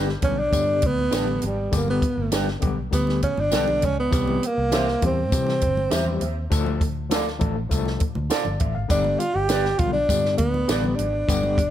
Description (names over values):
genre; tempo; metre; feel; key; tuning
uptempo 1960s-style soul; 100 BPM; 4/4; straight; G mixolydian; A4 = 443 Hz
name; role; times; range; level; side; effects
overdriven tine electric piano; accompaniment; 0.0-11.6 s; D3 to F5; -29 LUFS; left 5 dB; medium tremolo
electric guitar through a small old amp; stabs; 0.0-10.8 s; D4 to E5; -30 LUFS; right 4 dB; tape echo
vintage muted fingered electric bass; bass; 0.0-11.7 s; G1 to C3; -27 LUFS; equal; none
compact cocktail drum kit; drums; 0.1-11.7 s; hi-hat, kick drum, snare drum; -26 LUFS; equal; none
congas; percussion; 0.1-11.6 s; none; -36 LUFS; right 3 dB; none
breathy tenor saxophone; melody; 0.2-11.7 s; G3 to G4; -23 LUFS; right 1 dB; tape echo
tambourine; percussion; 0.5-11.4 s; none; -36 LUFS; left 7 dB; none
room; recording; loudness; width
light reverb; none; -20 LUFS; side -11 dB against mid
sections
0.0-11.7 A section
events
tenor saxophone solo 0.0-11.7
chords
0.0 G; 4.1 C; 6.5 Dm; 8.9 G